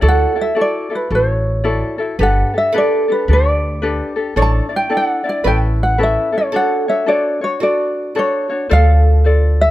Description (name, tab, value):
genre	Hawaiian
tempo	111 BPM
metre	4/4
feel	swing 63% on 8ths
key	D major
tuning	A4 = 440 Hz
part	oud	second line	0.0-9.7 s	F#4 to C#5	-22 LUFS	right 3 dB	none
part	ukulele	accompaniment	0.0-9.7 s	C#4 to D5	-20 LUFS	left 3 dB	none
part	upright bass	bass	0.0-9.7 s	G1 to D2	-14 LUFS	equal	none
part	ukulele	melody	0.1-9.7 s	B4 to A5	-17 LUFS	equal	none
room	little or no reverb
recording	close, detailed microphones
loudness	-13 LUFS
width	side -15 dB against mid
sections	0.0-8.7 A section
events	none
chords	0.0 Dadd9; 2.2 Gadd9; 4.4 Asus4; 5.5 Aadd9; 6.5 Dmaj7; 8.7 Dm7